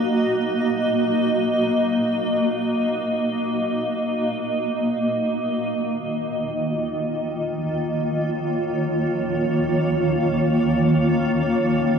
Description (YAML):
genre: ambient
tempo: free time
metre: none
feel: none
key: unclear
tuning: A4 = 440 Hz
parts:
  - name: granular cloud pad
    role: solo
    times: 0.0-12.0 s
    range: Eb3 to F5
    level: -20 LUFS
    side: equal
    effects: built-in reverb, diffuse ambient delay
room: wet huge ambient reverb, RT60 7.2 s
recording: worn, warbling old tape, cassette tape, warbly pitch drift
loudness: -20 LUFS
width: side -6 dB against mid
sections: 0.0-5.7 A section; 5.7-12.0 B section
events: none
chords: 0.0 Ebmadd9; 5.7 Bbm/Eb